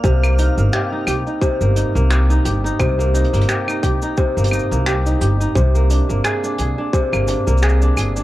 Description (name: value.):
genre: folktronica.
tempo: 87 BPM.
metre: 4/4.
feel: swing 56% on 16ths.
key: C minor.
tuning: A4 = 440 Hz.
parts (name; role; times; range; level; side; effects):
kora; arpeggios; 0.0-8.2 s; C3 to Ab4; -20 LUFS; equal; cassette tape, tape echo.
upright bass; bass; 0.0-8.2 s; G1 to C2; -17 LUFS; equal; transformer saturation.
electronic kick drum; drums; 0.0-7.1 s; none; -18 LUFS; equal; cassette tape.
jazz brush drum kit; drums; 0.0-8.2 s; cabasa, claves, finger snaps, hi-hat; -25 LUFS; equal; cassette tape.
room: studio reverb.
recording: home recording on cassette.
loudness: -15 LUFS.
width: side -15 dB against mid.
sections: 0.0-8.2 A section.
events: none.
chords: 0.0 Cm7; 5.6 Bb7.